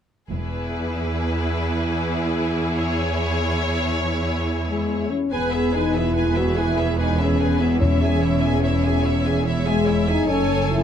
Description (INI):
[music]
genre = cinematic, heroic adventure film score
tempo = 96 BPM (dotted quarters)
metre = 12/8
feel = straight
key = E major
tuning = A4 = 442 Hz
[part]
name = rich symphonic violin section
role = melody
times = 0.3-10.8 s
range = B4 to G#5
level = -30 LUFS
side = left 3 dB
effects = none
[part]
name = rich symphonic violin section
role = second line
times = 0.3-10.8 s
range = G#4 to E5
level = -30 LUFS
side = left 1 dB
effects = none
[part]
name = rich symphonic viola section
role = accompaniment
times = 0.3-10.8 s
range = E4 to B4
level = -28 LUFS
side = right 2 dB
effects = none
[part]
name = rich symphonic cello section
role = bass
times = 0.3-10.8 s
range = E2 to F#2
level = -25 LUFS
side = right 2 dB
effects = none
[part]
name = rich symphonic double bass section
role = bass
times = 0.3-0.7, 5.3-10.8 s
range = E1 to F#1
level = -24 LUFS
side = right 3 dB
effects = none
[part]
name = mellow French horn section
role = sustained chords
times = 4.7-10.8 s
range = G#3 to F#4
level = -22 LUFS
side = left 4 dB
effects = none
[part]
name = timpani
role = percussion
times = 7.8-8.4 s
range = E2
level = -25 LUFS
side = equal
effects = none
[sound]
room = light reverb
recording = close, detailed microphones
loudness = -19 LUFS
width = side -8 dB against mid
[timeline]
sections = 0.3-5.3 A section; 5.3-10.8 B section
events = none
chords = 0.3 E; 2.8 C#m/E; 5.3 E; 7.8 C#m/E; 10.3 F#madd9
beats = | 0.31 0.94 1.56 2.19 | 2.80 3.42 4.04 4.67 | 5.31 5.94 6.57 7.19 | 7.82 8.44 9.05 9.67 | 10.29